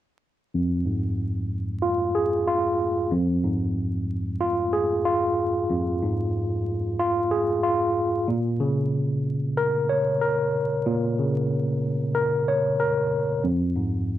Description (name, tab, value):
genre	hip hop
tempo	93 BPM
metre	4/4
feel	swing 57% on 16ths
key	F minor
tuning	A4 = 441 Hz
part	tine electric piano	solo	0.5-14.2 s	F2 to Db5	-22 LUFS	equal	overdrive, fast stereo tremolo, cassette tape, high-pass filter, low-pass filter
room	moderate studio reverb, RT60 0.6 s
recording	vinyl crackle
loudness	-22 LUFS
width	side -12 dB against mid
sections	0.5-3.1 A section; 3.1-14.2 B section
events	filter sweep on tine electric piano 0.5-3.1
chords	0.5 Fm; 8.3 Bbm; 13.4 Fm